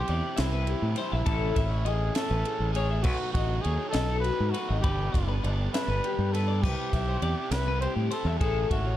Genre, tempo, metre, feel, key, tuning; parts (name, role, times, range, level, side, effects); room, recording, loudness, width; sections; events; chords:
math rock and midwest emo; 67 BPM (dotted quarters); 6/8; straight; A4 = 440 Hz
breathy trumpet; melody; 0.0-9.0 s; E4 to C5; -33 LUFS; right 1 dB; plate reverb
twelve-string electric guitar; arpeggios; 0.0-9.0 s; F#4 to E5; -34 LUFS; left 9 dB; plate reverb
biting overdriven guitar; riff; 0.0-9.0 s; G2 to E4; -36 LUFS; right 2 dB; spring reverb
growling fingered electric bass; bass; 0.1-9.0 s; F#1 to A2; -28 LUFS; equal; overdrive
crisp fusion drum kit; drums; 0.1-8.8 s; crash cymbal, kick drum, ride cymbal, snare drum; -32 LUFS; equal
light reverb; dark, warm production; -25 LUFS; side -12 dB against mid
0.0-9.0 A section
0.0 C; 1.3 Amaj7; 3.0 B7; 4.8 G; 6.6 Cmaj7; 8.4 Amaj7